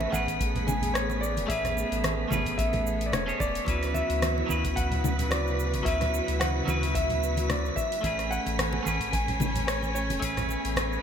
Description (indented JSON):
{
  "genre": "sunset chillout",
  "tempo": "110 BPM",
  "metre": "4/4",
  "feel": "swing 55% on 16ths",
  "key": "A major",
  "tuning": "A4 = 437 Hz",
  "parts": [
    { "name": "warm grand piano", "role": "melody", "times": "0.0-11.0 s", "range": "C#5 to G#5", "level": "-32 LUFS", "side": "equal", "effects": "digital delay" },
    { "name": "clean electric guitar", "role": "accompaniment", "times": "0.0-11.0 s", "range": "C#3 to C#5", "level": "-33 LUFS", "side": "equal", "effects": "auto-pan, vintage 12-bit sampler grit, ping-pong delay" },
    { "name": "rich studio string section", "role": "sustained chords", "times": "0.0-11.0 s", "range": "C#3 to G#5", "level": "-34 LUFS", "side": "left 1 dB", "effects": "none" },
    { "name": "warm sub bass", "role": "bass", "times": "0.0-11.0 s", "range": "E1 to D2", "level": "-31 LUFS", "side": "equal", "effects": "none" },
    { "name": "congas", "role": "percussion", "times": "0.0-10.9 s", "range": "none", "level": "-36 LUFS", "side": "right 2 dB", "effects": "none" },
    { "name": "wind-like tuned noise texture", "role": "texture", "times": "0.0-11.0 s", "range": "B6", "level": "-39 LUFS", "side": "right 5 dB", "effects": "built-in reverb" },
    { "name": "deep house drum kit", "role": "drums", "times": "0.1-11.0 s", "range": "cabasa, congas, hi-hat, rim click", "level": "-33 LUFS", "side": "left 1 dB", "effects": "gated reverb" },
    { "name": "electronic kick drum", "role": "drums", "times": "0.3-10.3 s", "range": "none", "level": "-33 LUFS", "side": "equal", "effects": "none" }
  ],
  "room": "moderate lush hall reverb, RT60 2.4 s",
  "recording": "bright 1980s-style digital production",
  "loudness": "-25 LUFS",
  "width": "side -8 dB against mid",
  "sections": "0.0-11.0 A section",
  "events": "none",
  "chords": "0.0 Amaj9; 3.7 Dmaj13; 8.0 Amaj9",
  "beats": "0.40 0.95 | 1.50 2.04 2.58 3.13 | 3.68 4.22 4.77 5.31 | 5.86 6.40 6.95 7.50 | 8.04 8.59 9.13 9.68 | 10.22 10.77"
}